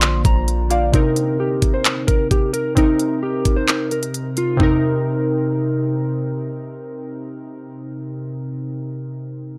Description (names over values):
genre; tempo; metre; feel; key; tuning
hip hop, trap; 131 BPM; 4/4; half-time; C minor; A4 = 442 Hz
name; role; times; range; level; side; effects
mellow electric guitar; melody; 0.0-5.9 s; Eb4 to C6; -25 LUFS; equal; subtle chorus
glassy digital keys; accompaniment; 0.0-9.6 s; C3 to D5; -24 LUFS; equal; chorus
ethereal airy pad; sustained chords; 0.0-0.9 s; D3 to D4; -35 LUFS; equal; ensemble chorus, built-in reverb, phaser
warm 808-style bass; bass; 0.0-0.9 s; Bb1; -22 LUFS; equal; none
trap drum kit; drums; 0.0-4.7 s; handclaps, hi-hat, kick drum, toms; -20 LUFS; equal; none
room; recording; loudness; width
light reverb, digital ambience; dry, gritty hardware recording, transformer saturation; -19 LUFS; mono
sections
0.9-4.6 A section; 4.6-8.3 B section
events
none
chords
0.0 Bbadd9; 0.9 Cm7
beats
0.02 0.48 | 0.94 1.39 1.85 2.31 | 2.77 3.23 3.68 4.14 | 4.60 5.06 5.52 5.97 | 6.43 6.89 7.35 7.81